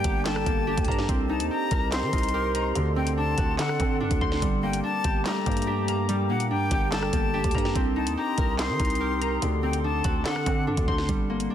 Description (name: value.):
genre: hip hop, drill.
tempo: 144 BPM.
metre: 4/4.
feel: half-time.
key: G harmonic minor.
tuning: A4 = 440 Hz.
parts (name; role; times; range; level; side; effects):
jazz flute; second line; 0.0-10.6 s; F#5 to C6; -31 LUFS; left 5 dB; digital delay.
concert harp; accompaniment; 0.0-11.5 s; D3 to C5; -32 LUFS; right 1 dB; none.
warbly tape-like pad; sustained chords; 0.0-11.1 s; G4 to Eb6; -35 LUFS; left 1 dB; chorus, built-in reverb.
warbly lo-fi synth keys; arpeggios; 0.0-11.5 s; D3 to C6; -30 LUFS; right 1 dB; chorus, digital delay.
growling 808-style bass; bass; 0.0-11.5 s; G1 to Eb3; -30 LUFS; equal; none.
drill drum kit; drums; 0.0-11.5 s; handclaps, hi-hat, kick drum, rim click, snare drum; -28 LUFS; equal; none.
room: light reverb, digital ambience.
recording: dense, heavily limited modern master.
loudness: -23 LUFS.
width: side -10 dB against mid.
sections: 0.0-11.1 A section.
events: none.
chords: 0.0 Gmadd9; 1.1 Cm7; 2.8 D7; 4.4 Gmadd9; 7.8 Cm7; 9.4 D7.